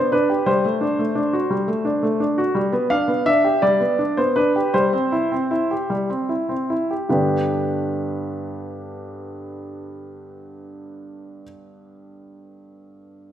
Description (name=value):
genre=classical-period piano sonatina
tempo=48-58 BPM (dotted quarters)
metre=6/8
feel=rubato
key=G major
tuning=A4 = 442 Hz
part: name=clear baby grand piano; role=solo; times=0.0-13.3 s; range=G2 to F5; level=-19 LUFS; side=equal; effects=none
room=moderate recital hall reverb, RT60 1.7 s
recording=none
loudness=-18 LUFS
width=side -10 dB against mid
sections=0.0-7.1 A section; 7.1-11.9 B section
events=slowing down 1.5-7.1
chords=0.5 D7/G; 2.6 G; 4.7 C/G; 7.1 G